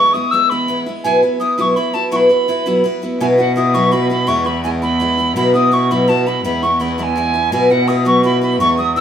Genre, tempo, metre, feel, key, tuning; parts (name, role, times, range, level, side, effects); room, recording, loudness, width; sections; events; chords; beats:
celtic folk, Celtic jig; 111 BPM (dotted quarters); 6/8; straight; B major; A4 = 442 Hz
mellow tin whistle; melody; 0.0-9.0 s; F#5 to E6; -16 LUFS; equal
picked steel-string acoustic guitar; accompaniment; 0.0-9.0 s; B2 to B4; -16 LUFS; equal
rich cello; bass; 3.2-9.0 s; E2 to B2; -18 LUFS; equal
wet stone room reverb, RT60 1.1 s; band playing live in one room; -13 LUFS; side -9 dB against mid
0.0-3.2 A section; 3.2-9.0 A section
0.0 E; 1.0 Bsus4; 4.3 E; 5.4 Bsus4; 6.4 E; 7.5 Bsus4
0.50 | 1.04 1.58 | 2.12 2.66 | 3.20 3.74 | 4.28 4.82 | 5.37 5.91 | 6.45 6.99 | 7.53 8.07 | 8.61